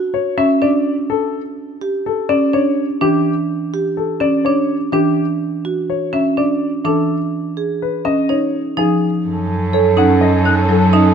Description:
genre	classical, minimalist pattern music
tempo	125 BPM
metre	4/4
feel	straight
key	A mixolydian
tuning	A4 = 440 Hz
part	marimba with medium mallets	arpeggios	0.0-11.1 s	C#4 to A4	-19 LUFS	right 7 dB	none
part	warm grand piano	melody	0.1-11.1 s	G4 to F#5	-20 LUFS	left 11 dB	none
part	marimba with medium hard mallets	accompaniment	0.4-11.1 s	E3 to D#4	-19 LUFS	equal	none
part	mellow soprano saxophone	second line	9.3-11.1 s	A4	-22 LUFS	right 2 dB	none
part	dark symphonic string section	sustained chords	9.3-11.1 s	C#4 to A4	-24 LUFS	left 3 dB	none
part	clear cello	bass	9.3-11.1 s	F#2	-17 LUFS	right 2 dB	none
part	mellow hollow concert flute	arpeggios	10.5 s	F#6	-22 LUFS	left 4 dB	none
room	light reverb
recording	close, detailed microphones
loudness	-14 LUFS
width	side -7 dB against mid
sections	0.0-9.3 A section; 9.3-11.1 B section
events	none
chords	0.0 Dmaj7; 1.6 A7sus4 (rootless); 5.4 Dmaj7; 7.3 C#; 9.3 F#m

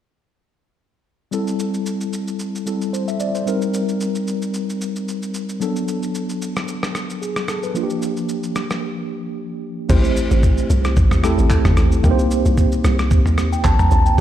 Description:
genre	amapiano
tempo	112 BPM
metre	4/4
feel	swing 55% on 16ths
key	unclear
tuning	A4 = 440 Hz
part	mellow tine electric piano	accompaniment	1.3-14.2 s	F3 to Bb5	-21 LUFS	equal	medium stereo tremolo
part	dusty soul sampler-style drum kit	drums	1.3-14.2 s	crash cymbal, handclaps, kick drum, rim click, shaker, toms	-20 LUFS	equal	none
part	hollow log drum bass	bass	9.9-14.2 s	G1 to C2	-17 LUFS	equal	none
room	light reverb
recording	played on a big sound system in a bare room, stone room reverb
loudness	-17 LUFS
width	side -11 dB against mid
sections	1.3-9.9 A section; 9.9-14.2 B section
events	break 8.8-9.9; drop 9.9-14.2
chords	1.3 Am7; 3.5 Cm7; 5.6 Bm7; 7.8 Gm7; 9.9 Am7; 12.0 Cm7

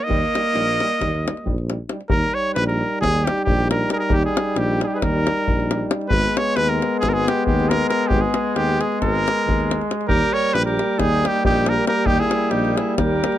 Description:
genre	balkan folk, Balkan brass band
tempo	271 BPM (eighths)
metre	9/8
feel	straight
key	unclear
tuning	A4 = 440 Hz
part	warm trumpet	melody	0.0-13.4 s	G4 to Eb5	-22 LUFS	equal	none
part	warm alto saxophone	second line	0.0-1.7, 10.1-13.4 s	Bb3 to Bb4	-26 LUFS	right 3 dB	none
part	clear trombone	accompaniment	0.1-13.4 s	G3 to Ab3	-26 LUFS	right 2 dB	none
part	warm euphonium	accompaniment	0.1-13.4 s	Bb3 to Eb4	-27 LUFS	left 5 dB	none
part	mellow tuba	bass	0.1-13.2 s	Ab1 to Eb2	-23 LUFS	equal	none
part	davul	percussion	0.1-13.4 s	none	-24 LUFS	left 1 dB	none
room	little or no reverb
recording	none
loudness	-17 LUFS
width	side -12 dB against mid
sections	0.0-2.1 A section; 2.1-13.4 B section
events	none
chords	0.1 Eb; 6.1 Abm; 10.1 Eb

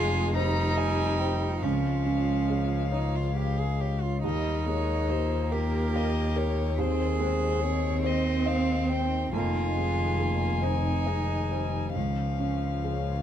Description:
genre	neoclassical piano and strings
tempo	46 BPM (dotted quarters)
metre	6/8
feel	rubato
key	F minor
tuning	A4 = 440 Hz
part	dark violin	melody	0.0-13.2 s	Bb4 to Bb5	-34 LUFS	left 6 dB	none
part	warm cello	second line	0.0-13.2 s	C4 to Ab4	-32 LUFS	right 4 dB	none
part	dark viola	accompaniment	0.0-13.2 s	F3 to C4	-33 LUFS	right 2 dB	none
part	felt-muted upright piano	accompaniment	0.0-13.2 s	Db2 to F5	-35 LUFS	right 1 dB	none
part	dark analog pad	sustained chords	0.0-13.2 s	Eb3 to Eb5	-39 LUFS	left 1 dB	chorus, phaser
part	clear double bass	bass	0.0-13.2 s	F1 to Eb2	-29 LUFS	left 1 dB	none
room	little or no reverb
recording	close, detailed microphones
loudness	-25 LUFS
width	side -10 dB against mid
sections	0.0-13.2 A section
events	none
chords	0.0 Fm7; 1.6 Db; 4.2 Ebadd9; 6.8 Ab/Eb; 9.3 Fm7; 12.0 Db

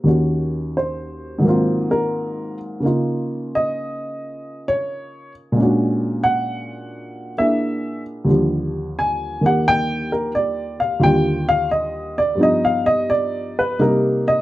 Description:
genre	solo jazz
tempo	87 BPM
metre	4/4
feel	swing 69% on 8ths, rubato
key	Eb major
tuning	A4 = 442 Hz
part	dark upright piano	solo	0.0-14.4 s	Eb2 to Ab5	-18 LUFS	equal	none
room	light reverb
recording	close, detailed microphones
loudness	-17 LUFS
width	side -16 dB against mid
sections	0.0-13.8 A section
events	upright piano solo 0.0-14.4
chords	0.1 Ebm7; 1.4 Ab13; 2.8 Db69; 5.6 Bb7alt; 8.3 Ebmaj9; 12.4 G7b13; 13.8 Cm7

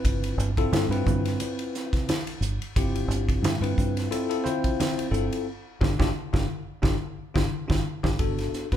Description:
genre	electric jazz fusion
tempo	88 BPM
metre	4/4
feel	swing 55% on 16ths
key	G mixolydian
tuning	A4 = 441 Hz
part	bell-like tine electric piano	accompaniment	0.0-8.8 s	B3 to C5	-29 LUFS	left 3 dB	medium stereo tremolo
part	fingered electric bass	bass	0.0-8.8 s	G1 to G2	-28 LUFS	right 1 dB	none
part	crisp fusion drum kit	drums	0.0-8.8 s	hi-hat, kick drum, ride cymbal, snare drum	-28 LUFS	equal	none
part	congas	percussion	0.1-8.3 s	none	-31 LUFS	right 1 dB	none
room	light reverb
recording	band playing live in one room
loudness	-24 LUFS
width	side -10 dB against mid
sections	0.0-8.2 A section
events	band accent 5.5-8.2; drum fill 6.8-8.2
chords	0.0 G7sus4; 8.2 Gmaj9

